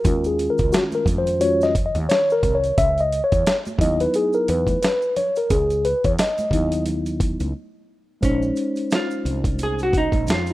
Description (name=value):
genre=hip hop, jazz-hop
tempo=88 BPM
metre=4/4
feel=swing 57% on 16ths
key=unclear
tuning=A4 = 442 Hz
part: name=mellow tine electric piano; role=accompaniment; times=0.0-10.5 s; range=Eb3 to Fb5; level=-20 LUFS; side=left 1 dB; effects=medium stereo tremolo
part: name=woody fretless electric bass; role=bass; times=0.0-10.5 s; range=Bb1 to F2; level=-25 LUFS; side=equal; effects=none
part: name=maracas and congas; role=percussion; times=0.0-10.5 s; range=none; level=-37 LUFS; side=right 3 dB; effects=none
part: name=dusty soul sampler-style drum kit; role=drums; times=0.1-10.5 s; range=hi-hat, kick drum, snare drum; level=-23 LUFS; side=equal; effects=none
part: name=vintage hollow-body jazz guitar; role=melody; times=8.2-10.5 s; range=Db4 to Ab4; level=-24 LUFS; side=right 1 dB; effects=slapback echo
room=light reverb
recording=rough home demo mix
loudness=-18 LUFS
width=side -17 dB against mid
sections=0.0-8.2 A section; 8.2-10.5 B section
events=tine electric piano solo 0.0-8.2; break 7.6-8.2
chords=0.0 Ebm11; 2.8 Dbm11; 8.2 Bbm11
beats=| 0.05 0.73 1.41 2.10 | 2.78 3.46 4.14 4.82 | 5.50 6.19 6.87 7.55 | 8.23 8.91 9.60 10.28